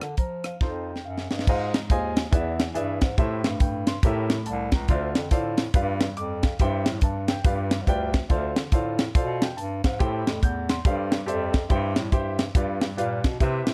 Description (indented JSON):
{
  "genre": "uptempo gospel",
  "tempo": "141 BPM",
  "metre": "4/4",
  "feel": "swing 62% on 8ths",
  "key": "unclear",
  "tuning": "A4 = 439 Hz",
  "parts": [
    { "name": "warm baby grand piano", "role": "accompaniment", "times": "0.0-13.7 s", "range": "G2 to G6", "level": "-31 LUFS", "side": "equal", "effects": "none" },
    { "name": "warm bass clarinet", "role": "bass", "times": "0.0-13.7 s", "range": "C2 to F3", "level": "-32 LUFS", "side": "equal", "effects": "none" },
    { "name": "tight funk drum kit", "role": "drums", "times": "0.0-13.7 s", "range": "crash cymbal, hi-hat, kick drum, rim click, snare drum", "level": "-25 LUFS", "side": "equal", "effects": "none" }
  ],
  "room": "small room ambience",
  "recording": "dark, warm production",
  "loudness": "-25 LUFS",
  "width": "mono",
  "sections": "0.0-1.5 A section; 1.5-13.7 B section",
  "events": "drum fill 0.6-1.5",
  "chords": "0.0 Bb; 0.6 F7; 1.5 Ab6; 2.3 E7; 3.2 Am7; 4.0 A7b9; 4.9 Dm7; 5.7 G7; 6.6 C/G; 7.5 G7; 8.3 Dm7; 10.0 Am7; 10.9 G9sus4; 11.7 C/G; 12.6 G7"
}